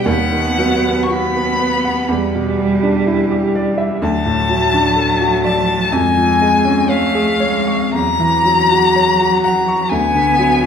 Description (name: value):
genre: classical, slow romantic movement for piano trio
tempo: 62 BPM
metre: 4/4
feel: rubato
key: F# minor from 4.0 s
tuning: A4 = 443 Hz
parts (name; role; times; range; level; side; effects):
- rich violin; melody; 0.0-10.7 s; E#5 to C#6; -16 LUFS; left 4 dB; none
- rich cello; second line; 0.0-10.7 s; F#3 to B3; -20 LUFS; right 2 dB; none
- warm grand piano; accompaniment; 0.0-10.7 s; D2 to C#6; -17 LUFS; equal; none
room: wet recital hall reverb, RT60 1.3 s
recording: heard from further back in the room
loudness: -13 LUFS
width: side -7 dB against mid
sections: 0.0-10.7 A section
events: none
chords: 0.1 B/D#; 2.1 Em7; 4.0 D; 5.9 C#/E#; 8.0 F#7/E; 9.9 Bm/D